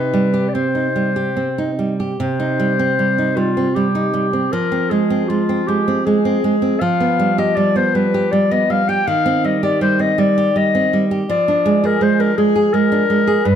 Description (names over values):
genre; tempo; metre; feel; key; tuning
romantic duo for clarinet and classical guitar; 71-84 BPM; 3/4; rubato; C minor; A4 = 440 Hz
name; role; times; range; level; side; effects
warm clarinet; melody; 0.0-13.6 s; F4 to G5; -18 LUFS; left 5 dB; none
nylon-string guitar; accompaniment; 0.0-13.6 s; G2 to Ab4; -16 LUFS; right 3 dB; none
room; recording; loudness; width
light reverb; close, detailed microphones; -14 LUFS; side -9 dB against mid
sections
0.0-2.2 A section; 2.2-13.6 B section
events
none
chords
0.0 Cm; 4.5 Fm; 6.8 G7/F; 9.1 Cm/Eb; 11.3 Ddim/F